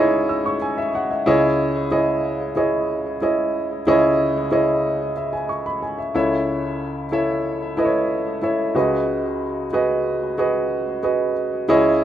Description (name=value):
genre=pop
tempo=92 BPM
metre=4/4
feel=straight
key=C# minor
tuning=A4 = 442 Hz
part: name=warm upright piano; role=solo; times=0.0-12.0 s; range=C#2 to E6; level=-18 LUFS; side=right 1 dB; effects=ping-pong delay
room=light reverb, studio reverb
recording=rough home demo mix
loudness=-18 LUFS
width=side -11 dB against mid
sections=0.0-1.3 A section; 1.3-12.0 B section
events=none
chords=0.0 C#madd9; 6.1 A/C#; 8.8 B6/C#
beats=0.61 | 1.26 1.92 2.57 3.22 | 3.87 4.52 5.17 5.82 | 6.47 7.12 7.78 8.43 | 9.08 9.73 10.38 11.04 | 11.69